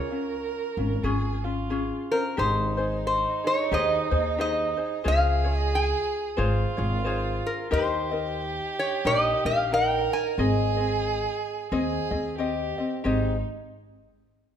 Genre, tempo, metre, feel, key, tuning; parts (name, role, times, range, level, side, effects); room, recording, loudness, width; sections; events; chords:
Hawaiian; 90 BPM; 4/4; swing 60% on 8ths; Ab major; A4 = 439 Hz
metal-body resonator slide guitar; melody; 0.0-12.3 s; Bb4 to Ab5; -26 LUFS; equal
dark violin; second line; 0.0-13.4 s; Eb4 to Bb4; -30 LUFS; right 5 dB
ukulele; accompaniment; 0.0-13.4 s; C4 to Eb5; -30 LUFS; left 3 dB
upright bass; bass; 0.8-13.4 s; Ab1 to Eb2; -28 LUFS; equal
light reverb; minimal, uncompressed stereo recording; -23 LUFS; side -9 dB against mid
0.0-2.4 A section; 2.4-13.0 B section; 13.0-14.6 C section
0.0 Db; 2.4 Abmaj7; 5.0 Dbmaj7; 7.7 Eb; 10.4 Abmaj7